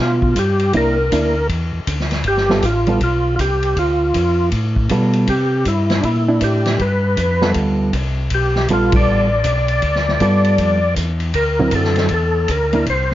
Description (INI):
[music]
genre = soul jazz organ trio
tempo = 158 BPM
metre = 4/4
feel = swing 64% on 8ths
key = G mixolydian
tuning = A4 = 439 Hz
[part]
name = percussive tonewheel organ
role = melody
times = 0.0-13.1 s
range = D4 to D5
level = -18 LUFS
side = left 1 dB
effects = slow rotary speaker, overdrive, chorus vibrato
[part]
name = mellow tonewheel organ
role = bass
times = 0.0-13.1 s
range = G1 to C3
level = -19 LUFS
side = equal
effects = overdrive, chorus vibrato, slow rotary speaker
[part]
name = swinging big-band drum kit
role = drums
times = 0.2-13.1 s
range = hi-hat, kick drum, ride cymbal, snare drum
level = -23 LUFS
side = equal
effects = none
[part]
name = hollow-body jazz guitar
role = accompaniment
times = 0.7-12.9 s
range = D3 to A4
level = -19 LUFS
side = right 2 dB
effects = none
[sound]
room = moderate club reverb, RT60 0.8 s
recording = worn, warbling old tape, cassette tape, warbly pitch drift, nothing above 7.5 kHz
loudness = -14 LUFS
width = side -13 dB against mid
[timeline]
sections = 0.0-13.1 A section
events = band accent 8.9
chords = 0.0 G7; 0.7 C9; 2.3 G9; 5.3 C9; 6.8 G9; 11.4 D9